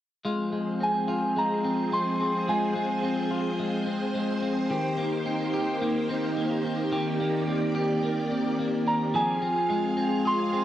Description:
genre	dream pop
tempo	108 BPM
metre	4/4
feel	straight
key	F dorian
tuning	A4 = 442 Hz
part	clean electric guitar	arpeggios	0.2-10.6 s	Eb3 to Ab4	-28 LUFS	left 1 dB	wide subtle chorus, cassette tape, plate reverb, analog delay
part	string machine, violins	sustained chords	0.3-10.6 s	Eb3 to F5	-29 LUFS	right 1 dB	ensemble chorus, cassette tape, plate reverb
part	soft synth bell	melody	0.8-3.3, 8.9-10.6 s	Ab5 to C6	-27 LUFS	right 1 dB	chorus, cassette tape, plate reverb, analog delay
room	wet studio reverb, RT60 0.5 s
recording	home recording on cassette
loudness	-24 LUFS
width	side -12 dB against mid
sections	0.3-9.1 A section; 9.1-10.6 B section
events	none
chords	0.3 Fm; 4.7 Cm7; 9.1 Fm

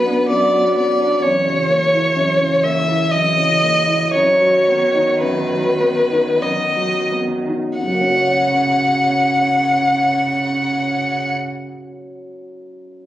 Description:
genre	classical, slow romantic movement for piano trio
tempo	41-65 BPM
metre	3/4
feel	rubato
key	F# major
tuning	A4 = 439 Hz
part	warm violin	melody	0.0-11.3 s	B4 to F#5	-16 LUFS	left 1 dB	none
part	rich cello	second line	0.0-11.3 s	C#3 to B3	-24 LUFS	right 4 dB	none
part	warm grand piano	accompaniment	0.0-13.1 s	F#2 to C#5	-22 LUFS	equal	none
room	wet recital hall reverb, RT60 1.4 s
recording	recorded on a phone in the room, club reverb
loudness	-14 LUFS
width	side -13 dB against mid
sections	0.0-7.8 A section; 7.8-11.5 B section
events	slowing down 0.0-7.8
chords	0.0 Bm/F#; 1.2 F#7; 4.2 B/F#; 7.8 F#

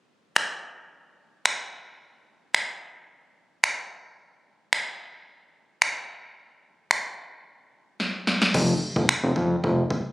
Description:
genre	dance-pop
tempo	110 BPM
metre	4/4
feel	straight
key	unclear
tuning	A4 = 439 Hz
part	punchy analog drum machine	drums	0.4-10.0 s	crash cymbal, finger snaps, kick drum, snare drum	-24 LUFS	equal	none
part	fat analog bass	bass	8.5-9.8 s	F1 to F2	-21 LUFS	equal	sidechain pumping
room	light reverb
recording	recorded on a phone in the room, studio reverb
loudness	-23 LUFS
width	side -20 dB against mid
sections	0.0-8.5 A section; 8.5-10.1 B section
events	drum fill 8.0-8.5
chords	none

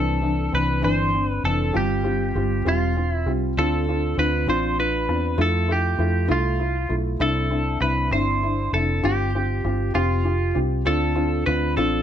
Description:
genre	six-eight pop ballad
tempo	66 BPM (dotted quarters)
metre	6/8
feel	straight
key	C major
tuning	A4 = 439 Hz
part	twelve-string electric guitar	melody	0.0-12.0 s	F4 to C5	-25 LUFS	right 1 dB	none
part	felt-muted upright piano	accompaniment	0.0-12.0 s	E3 to G4	-24 LUFS	left 1 dB	none
part	vintage muted fingered electric bass	bass	0.0-12.0 s	E1 to F2	-24 LUFS	equal	none
room	light reverb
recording	none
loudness	-20 LUFS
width	side -9 dB against mid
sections	0.0-12.0 A section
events	none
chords	0.0 Cadd9; 1.7 G7sus4; 3.6 Dm7; 5.4 Fmaj7; 7.2 Cadd9; 9.0 G7sus4; 10.8 Dm7

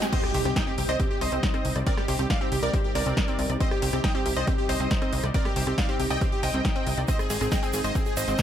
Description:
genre	uplifting trance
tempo	138 BPM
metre	4/4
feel	straight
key	C minor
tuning	A4 = 442 Hz
part	supersaw stab	melody	0.0-8.4 s	G4 to G5	-29 LUFS	equal	sidechain pumping, ping-pong delay
part	lush unison pad	sustained chords	0.0-8.4 s	C3 to Eb4	-35 LUFS	right 1 dB	chorus, sidechain pumping
part	wide unison pluck	arpeggios	0.0-8.4 s	C4 to Ab5	-34 LUFS	left 2 dB	sidechain pumping, dub echo
part	house drum kit	drums	0.0-8.4 s	crash cymbal, hi-hat, ride cymbal, rim click, snare drum	-33 LUFS	equal	small room ambience
part	egg shaker	percussion	0.0-0.1, 7.1-8.4 s	none	-39 LUFS	right 6 dB	none
part	riser and impact	sound effects	0.0-1.9 s	none	-35 LUFS	equal	none
part	dark grand piano	second line	0.1-8.4 s	G4 to G5	-38 LUFS	right 1 dB	none
part	electronic kick drum	drums	0.1-8.4 s	none	-27 LUFS	equal	small room ambience
part	plucky analog bass	bass	0.3-8.4 s	Ab1 to C2	-29 LUFS	equal	sidechain pumping
room	little or no reverb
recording	none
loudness	-23 LUFS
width	side -10 dB against mid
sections	0.1-8.4 A section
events	drop 0.1-8.4; impact 0.1-1.9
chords	0.1 Cmadd9; 7.1 Ab

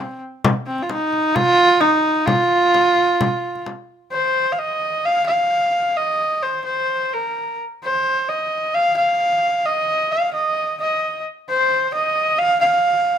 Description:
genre	mongolian traditional, Mongolian folk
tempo	130 BPM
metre	4/4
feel	straight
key	unclear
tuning	A4 = 442 Hz
part	clear horsehead fiddle	melody	0.0-13.2 s	C4 to F5	-16 LUFS	right 1 dB	plate reverb
part	frame drum	percussion	0.4-3.8 s	none	-21 LUFS	left 3 dB	none
room	wet studio reverb, RT60 0.5 s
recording	rough home demo mix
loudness	-16 LUFS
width	side -8 dB against mid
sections	0.0-4.1 A section; 4.1-13.2 B section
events	none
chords	none

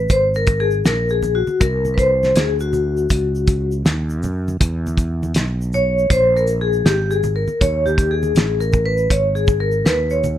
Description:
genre	hip hop, jazz-hop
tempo	80 BPM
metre	4/4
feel	swing 65% on 16ths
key	unclear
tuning	A4 = 439 Hz
part	vibraphone with medium hard mallets	accompaniment	0.0-10.3 s	F#4 to C#5	-18 LUFS	left 2 dB	none
part	sustaining fretless electric bass	bass	0.0-10.4 s	G#1 to F#2	-21 LUFS	equal	none
part	cloth-damped thuddy drum kit	drums	0.1-10.4 s	hi-hat, kick drum, shaker, snare drum	-17 LUFS	equal	none
part	tube shaker and congas	percussion	0.1-10.4 s	none	-31 LUFS	right 2 dB	none
room	light reverb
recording	none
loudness	-15 LUFS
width	side -12 dB against mid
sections	0.0-10.4 A section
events	vibraphone solo 0.0-10.4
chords	0.1 G#; 3.1 C#m11; 6.1 G#maj9; 7.6 Amaj9#11; 9.1 G#m

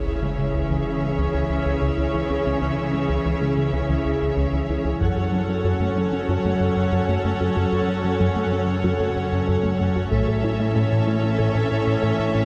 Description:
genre	cinematic, hybrid orchestral and electronic film score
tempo	94 BPM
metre	4/4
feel	straight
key	C# minor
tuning	A4 = 440 Hz
part	warm symphonic violin section	second line	0.0-12.4 s	C#5 to F#5	-34 LUFS	equal	none
part	warm symphonic viola section	accompaniment	0.0-12.4 s	C#4 to A4	-30 LUFS	equal	none
part	analog drone	sustained chords	0.0-12.4 s	E3 to C#5	-29 LUFS	equal	chorus
part	clear symphonic cello section	bass	0.0-12.4 s	F#2 to C#3	-31 LUFS	equal	none
part	warm symphonic double bass section	bass	0.0-12.4 s	F#1 to C#2	-31 LUFS	equal	none
part	impact	sound effects	0.0-2.5 s	none	-36 LUFS	equal	none
part	tight sequenced synth	arpeggios	0.1-12.4 s	C#3 to A4	-33 LUFS	equal	none
part	round analog bass	riff	0.1-12.4 s	C#2 to A3	-28 LUFS	equal	none
part	solo taiko drums	drums	5.0-6.3, 10.1-11.4 s	none	-32 LUFS	equal	none
room	light reverb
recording	none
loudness	-22 LUFS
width	mono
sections	0.0-12.4 A section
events	build-up 0.0-12.4; impact 0.0-2.5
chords	0.0 C#m; 5.0 F#m; 10.1 A

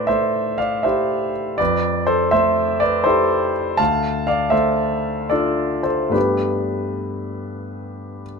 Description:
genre	classical, impressionist solo piano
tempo	68-84 BPM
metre	3/4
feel	rubato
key	unclear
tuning	A4 = 441 Hz
part	clear concert grand piano	solo	0.0-8.4 s	D2 to A5	-18 LUFS	equal	none
room	moderate studio reverb, RT60 0.6 s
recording	minimal, uncompressed stereo recording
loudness	-17 LUFS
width	side -5 dB against mid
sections	0.0-8.4 A section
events	none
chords	0.0 Am9; 1.6 Fmaj9; 3.8 Dm7; 6.2 Gadd9

